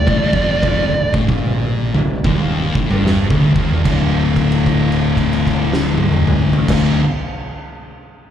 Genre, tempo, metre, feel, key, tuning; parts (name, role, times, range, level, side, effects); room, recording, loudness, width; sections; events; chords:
stoner and doom metal; 74 BPM; 4/4; swing 63% on 8ths; D phrygian; A4 = 439 Hz
fuzz lead guitar; melody; 0.0-1.1 s; D5; -21 LUFS; right 3 dB; distortion, slapback echo, tape echo
thick fuzz guitar; riff; 0.0-7.0 s; D2 to D3; -18 LUFS; left 5 dB; distortion
thick fuzz guitar; riff; 0.0-7.0 s; D2 to D3; -22 LUFS; right 7 dB; distortion, slapback echo
fuzz fingered electric bass; bass; 0.0-7.0 s; D1 to Bb1; -23 LUFS; right 1 dB; overdrive
oversized low-tuned drum kit; drums; 0.1-6.9 s; crash cymbal, kick drum, snare drum, toms; -18 LUFS; right 1 dB
light reverb, studio reverb; live gig heard through the venue's PA, club ambience; -13 LUFS; side -9 dB against mid
0.0-3.9 A section; 3.9-7.1 B section
lead electric guitar solo 0.0-3.9; held note 3.9-6.6
0.0 Dm; 3.9 D5